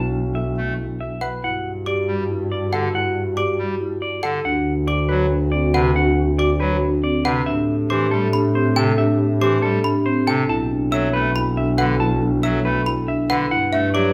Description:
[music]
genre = classical, minimalist pattern music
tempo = 278 BPM (eighths)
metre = 7/8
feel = straight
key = unclear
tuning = A4 = 440 Hz
[part]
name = semi-hollow electric guitar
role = melody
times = 0.0-14.1 s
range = A4 to A5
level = -28 LUFS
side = equal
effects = none
[part]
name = mellow hollow wooden-headed alto flute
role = second line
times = 0.0-14.1 s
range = D4 to B4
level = -30 LUFS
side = equal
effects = none
[part]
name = marimba with soft mallets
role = arpeggios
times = 0.0-14.1 s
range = C4 to A4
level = -25 LUFS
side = equal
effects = none
[part]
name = clear double bass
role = bass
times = 0.0-14.1 s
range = B1 to A2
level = -25 LUFS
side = equal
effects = none
[part]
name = pipe organ, clarinet reed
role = accompaniment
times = 0.6-14.1 s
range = C3 to A3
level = -29 LUFS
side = equal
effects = none
[part]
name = trough xylophone with wooden mallets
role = arpeggios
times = 1.2-14.1 s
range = E5 to E6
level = -29 LUFS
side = equal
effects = none
[sound]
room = wet large studio reverb, RT60 0.8 s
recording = heard from further back in the room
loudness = -20 LUFS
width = mono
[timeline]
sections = 0.0-14.1 A section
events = none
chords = 0.0 Bm7; 1.4 G5; 4.5 D6; 7.5 Am9; 10.5 Bm7; 13.5 Gmaj13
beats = 0.13 0.35 0.57 0.78 1.00 1.21 | 1.43 1.65 1.86 2.08 2.29 2.51 2.72 | 2.94 3.16 3.37 3.59 3.80 4.02 4.24 | 4.45 4.67 4.88 5.10 5.31 5.53 5.75 | 5.96 6.18 6.39 6.61 6.83 7.04 7.26 | 7.47 7.69 7.90 8.12 8.34 8.55 8.77 | 8.98 9.20 9.41 9.63 9.85 10.06 10.28 | 10.49 10.71 10.93 11.14 11.36 11.57 11.79 | 12.01 12.22 12.44 12.65 12.87 13.08 13.30 | 13.52 13.73 13.95

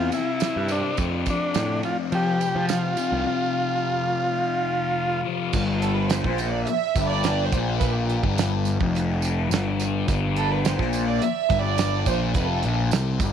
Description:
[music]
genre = psychedelic rock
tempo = 106 BPM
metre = 4/4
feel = straight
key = unclear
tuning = A4 = 440 Hz
[part]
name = overdriven combo organ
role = melody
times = 0.0-5.2 s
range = D4 to G4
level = -26 LUFS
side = right 1 dB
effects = tape echo
[part]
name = thick fuzz guitar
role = riff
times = 0.0-13.3 s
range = F2 to C4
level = -27 LUFS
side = left 10 dB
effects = distortion, phaser
[part]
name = fuzz picked electric bass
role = bass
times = 0.0-13.3 s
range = F1 to F3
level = -25 LUFS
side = right 1 dB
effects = overdrive
[part]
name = damped 70s drum kit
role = drums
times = 0.1-13.3 s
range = crash cymbal, hi-hat, kick drum, ride cymbal, snare drum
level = -28 LUFS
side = right 4 dB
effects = none
[part]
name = tambourine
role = percussion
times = 0.1-13.3 s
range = none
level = -38 LUFS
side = right 14 dB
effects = none
[part]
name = rich chamber string section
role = sustained chords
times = 5.8-12.8 s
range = G4 to E5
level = -27 LUFS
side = right 12 dB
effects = none
[sound]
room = light reverb, small room reverb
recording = 1960s-style stereo with parts hard left and right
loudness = -21 LUFS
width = side -8 dB against mid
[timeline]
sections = 0.0-5.5 A section; 5.5-13.3 B section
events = string section solo 5.5-13.3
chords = 0.0 C; 1.0 F5; 5.5 Fsus2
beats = 0.41 | 0.98 1.55 2.12 2.69 | 3.26 3.83 4.39 4.96 | 5.53 6.10 6.67 7.24 | 7.81 8.38 8.94 9.51 | 10.08 10.65 11.21 11.78 | 12.35 12.92

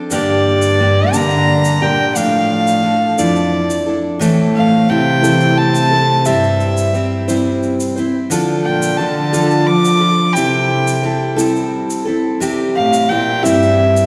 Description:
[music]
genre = acoustic folk duo or small band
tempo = 58 BPM (dotted quarters)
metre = 6/8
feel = straight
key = G dorian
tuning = A4 = 440 Hz
[part]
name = picked steel-string acoustic guitar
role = accompaniment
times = 0.0-14.1 s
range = G2 to C5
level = -18 LUFS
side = equal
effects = none
[part]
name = rich fiddle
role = melody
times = 0.1-14.1 s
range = D5 to D6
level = -19 LUFS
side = equal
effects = none
[part]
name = warm cello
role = second line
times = 0.1-14.1 s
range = F2 to F3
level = -20 LUFS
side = equal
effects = none
[part]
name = tube shaker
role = percussion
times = 0.1-14.1 s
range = none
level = -31 LUFS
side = equal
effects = none
[sound]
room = wet concert hall reverb, RT60 2.3 s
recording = recorded in a church or concert hall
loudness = -14 LUFS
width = mono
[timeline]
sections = 0.1-14.1 A section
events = none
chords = 0.1 Gm; 2.2 Dmadd9; 4.2 Am; 6.3 C; 8.3 Dm; 10.4 Am7/C; 12.4 C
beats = | 0.11 1.14 | 2.16 3.19 | 4.21 5.24 | 6.26 7.29 | 8.31 9.34 | 10.36 11.39 | 12.42 13.45

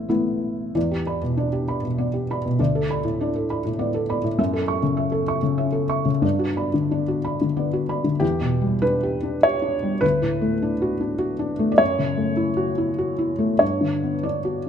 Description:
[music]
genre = neoclassical minimalist piano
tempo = 88-103 BPM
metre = 3/4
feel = rubato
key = unclear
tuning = A4 = 441 Hz
[part]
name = felt-muted upright piano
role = solo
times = 0.0-14.7 s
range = A1 to C#6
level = -20 LUFS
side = left 1 dB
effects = none
[sound]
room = light reverb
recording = close, detailed microphones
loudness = -20 LUFS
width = side -8 dB against mid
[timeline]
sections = 0.8-8.2 A section; 8.2-14.7 B section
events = none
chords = 0.0 Asus2; 0.8 Em7; 2.6 Bm7/D; 4.4 F#m7; 6.2 Gmaj7; 8.2 Em7; 10.0 Bm7/D; 11.8 F#m7; 13.6 Gmaj7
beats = 0.09 | 0.75 1.37 1.98 | 2.59 3.19 3.78 | 4.38 4.97 5.58 | 6.23 6.91 7.57 | 8.21 8.82 9.44 | 10.03 10.62 11.21 | 11.80 12.39 12.99 | 13.61 14.24

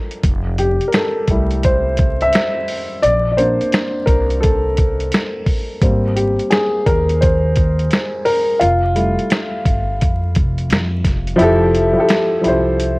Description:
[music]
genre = lo-fi hip hop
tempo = 86 BPM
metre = 4/4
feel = swing 64% on 16ths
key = F major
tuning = A4 = 440 Hz
[part]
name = dark upright piano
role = accompaniment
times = 0.0-13.0 s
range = F3 to E5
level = -16 LUFS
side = equal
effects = cassette tape, low-pass filter
[part]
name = dusty soul sampler-style drum kit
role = drums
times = 0.1-13.0 s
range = finger snaps, hi-hat, kick drum, snare drum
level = -18 LUFS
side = equal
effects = vintage 12-bit sampler grit
[part]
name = upright bass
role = bass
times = 0.2-13.0 s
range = F1 to F2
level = -19 LUFS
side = equal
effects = none
[sound]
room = light reverb, small room ambience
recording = worn, warbling old tape, cassette tape, vinyl crackle, warbly pitch drift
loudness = -14 LUFS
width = side -24 dB against mid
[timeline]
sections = 0.0-11.4 A section; 11.4-13.0 B section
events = upright piano solo 0.0-11.4; kick muted 11.4-13.0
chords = 0.2 Fmaj9; 3.0 Bbmaj9; 5.8 Abmaj9; 8.6 Fmaj9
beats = | 0.23 0.93 1.63 2.33 | 3.02 3.72 4.42 5.12 | 5.82 6.51 7.21 7.91 | 8.61 9.30 10.00 10.70 | 11.40 12.10 12.79

